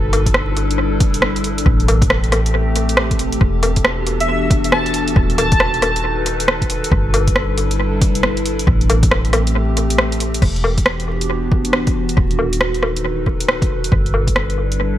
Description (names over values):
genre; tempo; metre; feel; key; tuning
future garage; 137 BPM; 4/4; swing 63% on 16ths; E minor; A4 = 440 Hz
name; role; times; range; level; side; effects
warbly tape-like pad; sustained chords; 0.0-15.0 s; D#3 to B4; -22 LUFS; left 1 dB; chorus, built-in reverb, phaser, sidechain pumping
soft 808-style bass; bass; 0.0-15.0 s; D#1 to A1; -19 LUFS; equal; tube saturation, sidechain pumping
wind-like tuned noise texture; texture; 0.0-10.4 s; A4; -30 LUFS; equal; built-in reverb
deep house drum kit; drums; 0.1-14.8 s; crash cymbal, hi-hat, rim click, woodblock; -19 LUFS; equal; overdrive, analog delay
electronic kick drum; drums; 0.3-14.3 s; none; -18 LUFS; equal; overdrive
airy dreamy lead; melody; 4.2-6.0 s; E5 to A5; -22 LUFS; equal; chorus, analog delay
room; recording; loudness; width
light reverb; echo-heavy mix, vinyl crackle; -14 LUFS; side -12 dB against mid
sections
0.0-10.4 A section; 10.4-15.0 B section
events
kick drops out 10.0-10.4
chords
0.0 G69; 1.7 Am7; 3.4 Em7; 5.2 B7/D#; 6.9 G69; 8.7 Am7; 10.4 Em7; 12.2 B7/D#; 13.9 G69